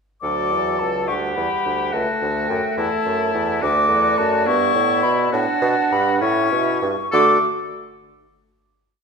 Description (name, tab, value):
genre	quick classical-period movement for wind quintet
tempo	65-72 BPM (dotted quarters)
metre	6/8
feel	straight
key	D major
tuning	A4 = 441 Hz
part	concert flute	melody	0.2-7.5 s	G5 to D6	-21 LUFS	left 3 dB	none
part	clear oboe	second line	0.2-7.4 s	C#4 to A4	-25 LUFS	left 4 dB	none
part	dark clarinet	accompaniment	0.2-7.4 s	F#4 to F#5	-24 LUFS	right 5 dB	none
part	warm French horn	accompaniment	0.2-7.4 s	F#3 to E4	-26 LUFS	equal	none
part	clear bassoon	bass	0.2-7.4 s	C#2 to D3	-24 LUFS	right 2 dB	none
room	wet recital hall reverb, RT60 1.4 s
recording	minimal, uncompressed stereo recording, faint mains hum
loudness	-17 LUFS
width	side -5 dB against mid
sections	0.2-7.1 A section; 7.1-8.9 final chord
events	none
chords	0.2 D; 1.1 G/D; 1.9 A5; 3.6 D; 4.5 Em/G; 5.3 D/A; 6.2 A7; 7.1 D